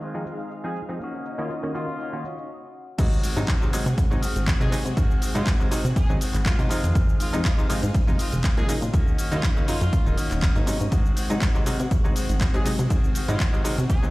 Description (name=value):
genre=filtered disco house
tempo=121 BPM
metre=4/4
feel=swing 54% on 16ths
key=Ab mixolydian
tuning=A4 = 438 Hz
part: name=string machine, full ensemble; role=sustained chords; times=0.0-14.1 s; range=C4 to Gb5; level=-36 LUFS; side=equal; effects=ensemble chorus, sidechain pumping, low-pass filter
part: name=electric guitar with an envelope filter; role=riff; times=0.0-14.1 s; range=Eb3 to Gb4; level=-33 LUFS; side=left 1 dB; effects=sidechain pumping, low-pass filter
part: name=house drum kit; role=drums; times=0.0-14.1 s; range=crash cymbal, handclaps, hi-hat, shaker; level=-32 LUFS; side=equal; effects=sidechain pumping on perc, low-pass filter on perc, small room reverb, sidechain pumping on hats, low-pass filter on hats, sidechain pumping on cymbals, low-pass filter on cymbals, low-pass filter on snare
part: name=muted clav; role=accompaniment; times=0.1-14.1 s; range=C3 to Ab4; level=-30 LUFS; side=equal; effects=overdrive, phaser, sidechain pumping, low-pass filter
part: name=bright horn section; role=melody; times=0.6-14.1 s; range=F4 to Ab4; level=-36 LUFS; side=equal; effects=sidechain pumping, low-pass filter, tape echo
part: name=plucky analog bass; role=bass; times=3.0-14.1 s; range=Eb1 to C3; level=-26 LUFS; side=equal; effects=sidechain pumping, low-pass filter
part: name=electronic kick drum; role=drums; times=3.0-14.0 s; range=none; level=-22 LUFS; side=equal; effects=small room reverb
room=digital ambience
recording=played on a big sound system in a bare room, stone room reverb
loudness=-21 LUFS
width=side -20 dB against mid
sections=0.0-3.0 A section; 3.0-14.1 B section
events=filter sweep 0.0-3.0; stop 2.5-3.0; drop 3.0-14.1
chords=0.0 Fm7; 1.0 Ebm7; 3.0 Ab7; 6.7 Fm7; 8.9 Ebm7; 10.9 Ab7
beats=0.01 0.51 | 1.00 1.50 1.99 2.49 | 2.99 3.48 3.98 4.47 | 4.97 5.46 5.96 6.46 | 6.95 7.45 7.95 8.44 | 8.94 9.43 9.93 10.42 | 10.92 11.42 11.91 12.41 | 12.90 13.40 13.89